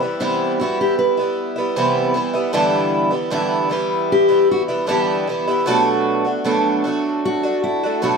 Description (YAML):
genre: acoustic pop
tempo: 77 BPM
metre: 4/4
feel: straight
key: G major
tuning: A4 = 440 Hz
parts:
  - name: picked twelve-string acoustic guitar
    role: accompaniment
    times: 0.0-8.2 s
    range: G2 to F#4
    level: -18 LUFS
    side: right 2 dB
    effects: none
  - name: fingerpicked steel-string acoustic guitar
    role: melody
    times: 0.2-8.2 s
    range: D4 to B4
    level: -21 LUFS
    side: left 2 dB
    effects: none
room: moderate large studio reverb, RT60 1.1 s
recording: band playing live in one room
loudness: -16 LUFS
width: side -5 dB against mid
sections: 0.0-8.2 A section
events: none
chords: 0.0 Cmaj7; 2.5 G6; 5.7 Bm7